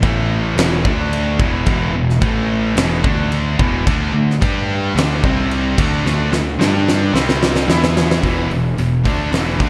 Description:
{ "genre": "hard rock", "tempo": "110 BPM", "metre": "4/4", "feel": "straight", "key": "E minor", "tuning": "A4 = 442 Hz", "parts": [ { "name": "high-gain distorted guitar", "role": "riff", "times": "0.0-9.7 s", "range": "E2 to G4", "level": "-24 LUFS", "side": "equal", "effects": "distortion" }, { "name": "overdriven electric guitar", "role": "riff", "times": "0.0-9.7 s", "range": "E2 to G4", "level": "-24 LUFS", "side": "equal", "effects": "none" }, { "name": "fuzz picked electric bass", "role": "bass", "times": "0.0-9.7 s", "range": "E1 to G2", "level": "-23 LUFS", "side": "equal", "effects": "overdrive" }, { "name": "huge arena drum kit", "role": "drums", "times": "0.0-9.7 s", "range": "crash cymbal, hi-hat, kick drum, snare drum", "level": "-21 LUFS", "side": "equal", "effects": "gated reverb" }, { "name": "distorted electric guitar", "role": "riff", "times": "3.9-9.7 s", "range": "E2 to G4", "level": "-29 LUFS", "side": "equal", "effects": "none" } ], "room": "moderate lush hall reverb, RT60 1.9 s, small room reverb", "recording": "bright 1980s-style digital production", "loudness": "-17 LUFS", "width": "mono", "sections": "0.0-8.2 A section; 8.2-9.7 B section", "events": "drum fill 6.0-8.2", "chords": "0.0 A5; 0.6 E5; 0.9 D5; 1.4 E5; 2.2 A5; 2.8 E5; 3.0 D5; 3.6 E5; 3.9 D5; 4.4 G5; 5.0 D5; 5.2 C5; 5.8 D5; 6.6 G5; 7.1 C5; 7.7 E5" }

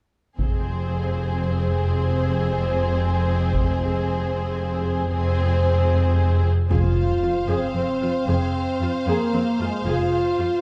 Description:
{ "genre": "cinematic, epic orchestral film score", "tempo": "76 BPM (dotted quarters)", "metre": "6/8", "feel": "straight", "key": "F minor", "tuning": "A4 = 440 Hz", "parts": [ { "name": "rich symphonic violin section", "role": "melody", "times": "0.4-10.6 s", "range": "C5 to F5", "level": "-37 LUFS", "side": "equal", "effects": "none" }, { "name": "warm symphonic violin section", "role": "second line", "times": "0.4-10.6 s", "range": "Ab4 to C5", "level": "-33 LUFS", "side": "equal", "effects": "none" }, { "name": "warm symphonic viola section", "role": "accompaniment", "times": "0.4-10.5 s", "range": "C4 to Ab4", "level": "-33 LUFS", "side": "equal", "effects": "none" }, { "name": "warm French horn section", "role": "sustained chords", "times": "0.4-10.6 s", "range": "Ab3 to C5", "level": "-28 LUFS", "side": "equal", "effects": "none" }, { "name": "rich symphonic cello section", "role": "bass", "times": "0.4-10.5 s", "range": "F2", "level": "-28 LUFS", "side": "equal", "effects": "none" }, { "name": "rich symphonic double bass section", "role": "bass", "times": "0.4-10.1 s", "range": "F1", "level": "-26 LUFS", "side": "equal", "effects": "none" }, { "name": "taiko ensemble", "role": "drums", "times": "0.4-4.6 s", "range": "none", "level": "-27 LUFS", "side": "equal", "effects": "none" }, { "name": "timpani", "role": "percussion", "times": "6.7-7.5 s", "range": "F2", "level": "-29 LUFS", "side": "equal", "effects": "none" }, { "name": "impact", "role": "sound effects", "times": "6.7-8.3 s", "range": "none", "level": "-33 LUFS", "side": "equal", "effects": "none" } ], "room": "moderate recital hall reverb, RT60 1.6 s", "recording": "dark, warm production", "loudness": "-22 LUFS", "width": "mono", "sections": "0.4-6.7 A section; 6.7-10.6 B section", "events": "impact 6.7-8.3", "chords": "0.4 Fm" }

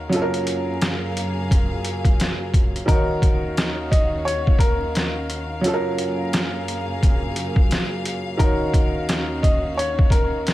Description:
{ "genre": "hip hop, boom-bap hip-hop", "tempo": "87 BPM", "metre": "4/4", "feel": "swing 60% on 16ths", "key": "Eb minor", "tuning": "A4 = 440 Hz", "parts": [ { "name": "clear upright piano", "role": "melody", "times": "0.0-10.5 s", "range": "Bb4 to Eb5", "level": "-26 LUFS", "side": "left 2 dB", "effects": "ping-pong delay" }, { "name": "clear baby grand piano", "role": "accompaniment", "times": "0.0-10.5 s", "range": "Eb3 to Db5", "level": "-26 LUFS", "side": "right 1 dB", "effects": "none" }, { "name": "warm studio string section", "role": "sustained chords", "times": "0.0-10.5 s", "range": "Eb2 to F5", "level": "-28 LUFS", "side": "equal", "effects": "none" }, { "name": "trip hop sampler-style drum kit", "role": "drums", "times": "0.1-10.5 s", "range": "hi-hat, kick drum, snare drum", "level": "-19 LUFS", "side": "equal", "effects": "none" } ], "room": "small room ambience", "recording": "vinyl crackle", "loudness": "-18 LUFS", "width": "side -15 dB against mid", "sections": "0.0-10.5 A section", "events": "none", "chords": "0.1 Gbmaj7; 2.9 Ebm7; 5.6 Gbmaj7; 8.4 Ebm7" }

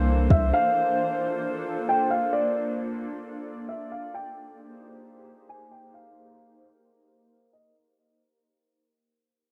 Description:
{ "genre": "hip hop", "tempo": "133 BPM", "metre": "4/4", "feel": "half-time", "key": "unclear", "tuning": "A4 = 440 Hz", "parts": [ { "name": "felt-muted upright piano", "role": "melody", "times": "0.0-7.7 s", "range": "D5 to Ab5", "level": "-28 LUFS", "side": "equal", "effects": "low-pass filter, cassette tape" }, { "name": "granular cloud pad", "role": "sustained chords", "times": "0.0-7.7 s", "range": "E3 to D5", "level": "-33 LUFS", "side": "equal", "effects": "built-in reverb, sidechain pumping, low-pass filter" }, { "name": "warm 808-style bass", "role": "bass", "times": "0.0-0.5 s", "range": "C2", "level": "-24 LUFS", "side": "equal", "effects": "none" } ], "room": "light reverb", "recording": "home recording on cassette", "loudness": "-25 LUFS", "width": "mono", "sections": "0.0-7.7 A section", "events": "fade-out 0.0-7.7; filter sweep 0.0-7.7", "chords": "0.0 C13; 0.5 Bbmaj9; 4.1 Abmaj9" }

